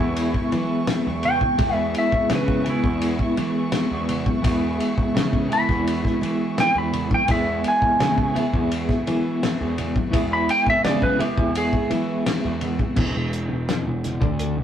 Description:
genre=psychedelic rock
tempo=84 BPM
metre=4/4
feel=straight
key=E major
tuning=A4 = 442 Hz
part: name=clean lap steel guitar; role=melody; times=0.0-11.9 s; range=E4 to B5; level=-22 LUFS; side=equal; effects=none
part: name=dark studio string section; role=sustained chords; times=0.0-12.9 s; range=B4 to C#6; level=-36 LUFS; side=right 2 dB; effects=none
part: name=twelve-string electric guitar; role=riff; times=0.0-14.6 s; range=E2 to G#4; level=-24 LUFS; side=equal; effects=tremolo
part: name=fuzz picked electric bass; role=bass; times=0.0-14.6 s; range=E1 to E3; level=-27 LUFS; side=right 1 dB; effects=overdrive
part: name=cloth-damped thuddy drum kit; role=drums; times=0.2-14.6 s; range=crash cymbal, hi-hat, kick drum, ride cymbal, snare drum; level=-25 LUFS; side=left 1 dB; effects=none
part: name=congas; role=percussion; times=0.3-14.2 s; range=none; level=-34 LUFS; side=left 1 dB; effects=none
room=moderate small room reverb, RT60 0.5 s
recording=rough rehearsal-room recording, tube saturation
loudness=-19 LUFS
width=side -9 dB against mid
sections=0.0-13.0 A section; 13.0-14.6 B section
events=electric slide guitar solo 0.0-13.0; drum fill 0.9-1.6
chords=0.0 E; 13.0 N.C.

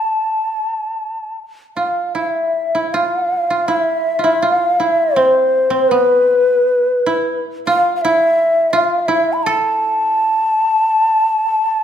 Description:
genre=japanese traditional, Japanese chamber music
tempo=83 BPM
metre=4/4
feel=uneven beats, rubato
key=A hirajoshi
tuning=A4 = 440 Hz
part: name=mellow hollow shakuhachi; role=melody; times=0.0-11.8 s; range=B4 to B5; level=-14 LUFS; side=left 1 dB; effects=none
part: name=koto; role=second line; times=0.0-11.8 s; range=B3 to A4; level=-19 LUFS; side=right 4 dB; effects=none
room=moderate concert hall reverb, RT60 2.1 s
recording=minimal, uncompressed stereo recording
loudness=-13 LUFS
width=side -9 dB against mid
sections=0.0-2.2 A section; 2.2-11.8 B section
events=none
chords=none

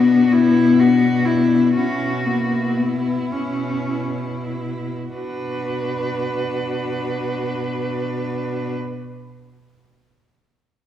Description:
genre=classical, lyrical piece for cello ensemble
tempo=31-45 BPM (dotted quarters)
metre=6/8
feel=rubato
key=B minor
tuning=A4 = 443 Hz
part: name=rich cello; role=melody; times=0.0-8.7 s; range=E4 to B4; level=-24 LUFS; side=equal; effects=none
part: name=rich cello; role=second line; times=0.0-8.7 s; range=D4 to F#4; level=-27 LUFS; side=equal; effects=none
part: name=rich cello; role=accompaniment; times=0.0-8.7 s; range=A#3 to D4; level=-21 LUFS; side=left 5 dB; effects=none
part: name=rich cello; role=bass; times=0.0-8.7 s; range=B2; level=-24 LUFS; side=equal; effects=none
room=wet recital hall reverb, RT60 1.7 s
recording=heard from further back in the room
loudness=-18 LUFS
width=side -10 dB against mid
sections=0.0-5.1 A section; 5.1-8.6 B section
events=slowing down 0.0-5.1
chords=0.0 Bm; 1.8 Bsus24; 5.1 Bm

